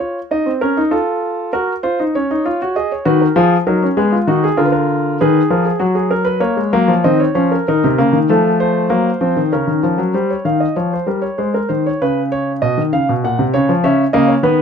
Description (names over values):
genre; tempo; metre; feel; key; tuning
classical, baroque-style 3-part fugue for grand piano; 98 BPM; 3/4; straight; Eb minor; A4 = 439 Hz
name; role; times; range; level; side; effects
warm concert grand piano; solo; 0.0-14.6 s; Bb2 to Gb5; -13 LUFS; left 1 dB; none
room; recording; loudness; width
light reverb; none; -13 LUFS; side -7 dB against mid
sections
0.0-10.1 A section; 10.1-14.6 B section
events
none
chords
0.3 Eb5; 0.9 F; 2.1 Dbadd9; 2.8 Ebm; 4.0 Abm; 4.6 Bb7/D; 5.8 Gbadd9; 6.4 Bbm; 7.7 Eb5; 8.3 F; 9.5 Bbm/Db; 10.1 Eb7; 11.4 Ab; 12.0 Db7; 13.2 Gb/Bb; 13.8 A#dim/C#